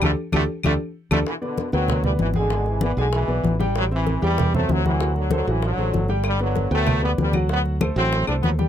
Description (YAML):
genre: latin, salsa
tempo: 193 BPM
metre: 4/4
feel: straight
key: G major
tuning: A4 = 441 Hz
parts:
  - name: brilliant trombone section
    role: melody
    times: 0.0-8.5 s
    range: B2 to D4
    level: -25 LUFS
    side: equal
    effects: none
  - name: clear grand piano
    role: accompaniment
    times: 0.0-8.7 s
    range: F#3 to Ab5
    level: -26 LUFS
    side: equal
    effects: none
  - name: fingered electric bass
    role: bass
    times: 0.0-8.7 s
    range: G1 to E2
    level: -22 LUFS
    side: right 1 dB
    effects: none
  - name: bongos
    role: percussion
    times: 0.0-8.7 s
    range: none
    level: -33 LUFS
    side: left 3 dB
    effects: none
  - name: claves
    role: percussion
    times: 0.0-1.2, 6.2-8.4 s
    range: none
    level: -31 LUFS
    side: left 4 dB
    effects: none
  - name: congas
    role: percussion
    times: 0.0-8.7 s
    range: none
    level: -26 LUFS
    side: left 2 dB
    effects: none
room: little or no reverb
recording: close, detailed microphones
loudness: -19 LUFS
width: side -10 dB against mid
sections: 0.0-1.3 A section; 1.3-8.7 A section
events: band accent 0.0-1.3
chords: 0.0 Dsus4; 1.3 Gmaj7; 2.5 E7/G#; 3.8 Am7; 5.0 D7; 6.2 Gmaj7; 7.5 D7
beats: | 0.02 0.33 0.64 0.95 | 1.27 1.58 1.89 2.20 | 2.51 2.82 3.13 3.44 | 3.75 4.07 4.38 4.69 | 5.00 5.31 5.62 5.93 | 6.25 6.56 6.87 7.18 | 7.49 7.80 8.12 8.43